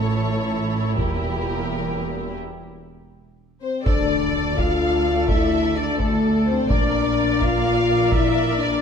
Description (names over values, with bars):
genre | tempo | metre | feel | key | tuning
cinematic, epic orchestral film score | 84 BPM (dotted quarters) | 6/8 | straight | D minor | A4 = 440 Hz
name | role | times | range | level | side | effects
warm symphonic violin section | melody | 0.0-8.8 s | Bb4 to D5 | -33 LUFS | left 4 dB | none
warm symphonic violin section | second line | 0.0-8.8 s | G4 to F5 | -26 LUFS | left 3 dB | none
warm symphonic viola section | accompaniment | 0.0-8.8 s | E4 to D5 | -30 LUFS | right 2 dB | none
dark French horn section | sustained chords | 0.0-8.8 s | E3 to F4 | -23 LUFS | left 5 dB | none
rich symphonic cello section | bass | 0.0-8.8 s | D2 to Bb2 | -28 LUFS | right 4 dB | none
rich symphonic double bass section | bass | 0.0-8.8 s | E1 to D2 | -27 LUFS | right 4 dB | none
solo taiko drums | drums | 1.0-8.6 s | none | -25 LUFS | equal | none
impact | sound effects | 3.9-5.3 s | none | -32 LUFS | equal | none
room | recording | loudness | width
moderate scoring stage reverb, RT60 1.8 s | dark, warm production | -18 LUFS | side -7 dB against mid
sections
0.0-3.9 A section; 3.9-8.8 B section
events
build-up 0.0-3.9; break 2.4-3.9; impact 3.9-5.3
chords
0.0 A; 1.0 Edim; 2.4 N.C.; 3.9 Dm; 6.7 Bb